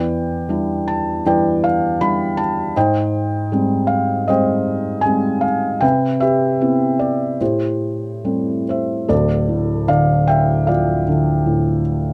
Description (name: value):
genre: classical, lyrical solo piano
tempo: 68-80 BPM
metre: 4/4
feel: rubato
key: unclear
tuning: A4 = 444 Hz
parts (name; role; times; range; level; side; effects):
- felt-muted upright piano; solo; 0.0-12.1 s; D1 to B5; -18 LUFS; equal; none
room: light reverb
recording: close, detailed microphones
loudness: -18 LUFS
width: mono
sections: 0.0-9.1 A section; 9.1-12.1 B section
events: none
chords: 0.0 Em7; 2.8 Abmaj7; 5.8 Cmaj7; 7.4 Am7; 9.1 Dm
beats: 0.50 1.26 2.01 | 2.76 3.52 4.29 5.05 | 5.83 6.62 7.41 8.25 | 9.08 9.88 10.68 11.46